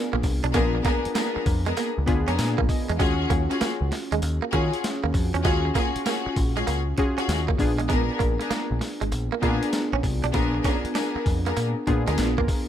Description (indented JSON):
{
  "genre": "R&B, new jack swing",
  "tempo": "98 BPM",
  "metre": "4/4",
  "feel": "swing 66% on 16ths",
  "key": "unclear",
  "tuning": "A4 = 441 Hz",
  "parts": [
    { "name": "warm analog keys", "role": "accompaniment", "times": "0.0-12.7 s", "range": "Cb4 to Cb6", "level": "-28 LUFS", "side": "left 1 dB", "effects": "chorus" },
    { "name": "direct-recorded clean electric guitar", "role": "riff", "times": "0.1-12.5 s", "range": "Ab3 to D4", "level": "-31 LUFS", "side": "right 8 dB", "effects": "lush chorus" },
    { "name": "deep dub picked electric bass", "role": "bass", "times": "0.1-12.5 s", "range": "Ab1 to Eb3", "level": "-26 LUFS", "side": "equal", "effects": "none" },
    { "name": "boom bap sampler-style drum kit", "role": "drums", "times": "0.2-12.7 s", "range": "hi-hat, kick drum, snare drum, tambourine", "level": "-27 LUFS", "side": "equal", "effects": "none" },
    { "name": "warm studio string section", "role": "stabs", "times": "0.5-12.2 s", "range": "Cb4 to Bb4", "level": "-29 LUFS", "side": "left 3 dB", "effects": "ping-pong delay" }
  ],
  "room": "little or no reverb",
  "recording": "none",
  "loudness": "-22 LUFS",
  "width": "side -10 dB against mid",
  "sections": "0.0-12.7 A section",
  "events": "synth keys fill 1.8-3.0",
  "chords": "0.0 Bb7b9; 3.0 Ebm11; 7.6 Bb7b9",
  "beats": "| 0.55 1.16 1.77 2.38 | 3.00 3.61 4.22 4.83 | 5.45 6.06 6.67 7.28 | 7.89 8.51 9.12 9.73 | 10.34 10.96 11.57 12.18"
}